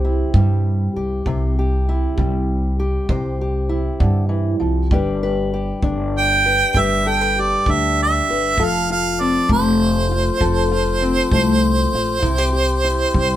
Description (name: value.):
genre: acoustic country blues, solo or duo.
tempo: 66 BPM (dotted quarters).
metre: 12/8.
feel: straight.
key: C major.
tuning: A4 = 440 Hz.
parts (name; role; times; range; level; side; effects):
fingerpicked steel-string acoustic guitar; accompaniment; 0.0-13.4 s; C3 to C5; -21 LUFS; left 2 dB; none.
upright bass; bass; 0.0-13.4 s; F1 to G2; -21 LUFS; equal; none.
kick drum; drums; 0.3-13.3 s; none; -21 LUFS; equal; none.
clear harmonica; melody; 6.2-13.4 s; C5 to G5; -18 LUFS; right 2 dB; none.
room: light reverb.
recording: band playing live in one room.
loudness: -16 LUFS.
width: side -12 dB against mid.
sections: 0.0-13.4 A section.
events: none.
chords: 0.0 C; 4.9 G; 8.6 F; 12.2 C.